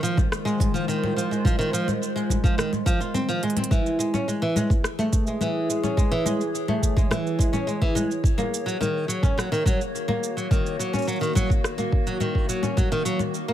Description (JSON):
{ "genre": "folktronica", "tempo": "106 BPM", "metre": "4/4", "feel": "straight", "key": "Gb lydian", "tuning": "A4 = 440 Hz", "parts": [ { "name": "warbly tape-like pad", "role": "sustained chords", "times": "0.0-13.5 s", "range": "Eb3 to Eb5", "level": "-30 LUFS", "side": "equal", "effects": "chorus, built-in reverb, phaser, plate reverb" }, { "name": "flamenco guitar", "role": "arpeggios", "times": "0.0-13.5 s", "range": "Eb3 to F4", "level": "-25 LUFS", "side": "equal", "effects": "ping-pong delay, plate reverb" }, { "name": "organic electronic drum kit", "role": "drums", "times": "0.0-13.5 s", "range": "congas, hi-hat, rim click, shaker", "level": "-29 LUFS", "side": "left 3 dB", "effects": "overdrive" }, { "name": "electronic kick drum", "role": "drums", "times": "0.2-12.9 s", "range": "none", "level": "-22 LUFS", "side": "equal", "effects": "overdrive" } ], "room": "moderate studio ambience, RT60 0.5 s", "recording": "none", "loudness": "-21 LUFS", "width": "side -11 dB against mid", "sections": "0.0-13.5 A section", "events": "kick drops out 3.1-3.7; drum fill 3.4", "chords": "0.0 Fm7; 3.7 Amaj7 (rootless); 8.2 Gb6; 12.8 Ebm" }